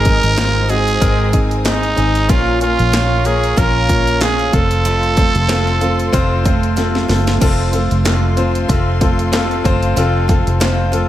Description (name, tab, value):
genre	piano-driven pop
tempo	94 BPM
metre	4/4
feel	swing 56% on 16ths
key	unclear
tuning	A4 = 442 Hz
part	growling trumpet	melody	0.0-6.8 s	Eb4 to Bb4	-18 LUFS	right 3 dB	none
part	clear baby grand piano	accompaniment	0.0-11.1 s	Ab2 to Db5	-20 LUFS	left 4 dB	none
part	warm studio string section	sustained chords	0.0-11.1 s	A4 to Eb6	-28 LUFS	left 3 dB	none
part	picked steel-string acoustic guitar	riff	0.0-11.1 s	F2 to Ab4	-23 LUFS	right 5 dB	none
part	vintage muted fingered electric bass	bass	0.0-11.1 s	F1 to Bb1	-17 LUFS	equal	none
part	house drum kit	drums	0.1-11.1 s	crash cymbal, handclaps, hi-hat, kick drum, snare drum	-18 LUFS	equal	none
room	light reverb, studio ambience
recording	none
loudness	-12 LUFS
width	side -13 dB against mid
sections	0.0-7.4 A section; 7.4-11.1 B section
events	drum fill 6.8-7.4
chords	0.0 Ab; 2.3 Bbm; 4.5 F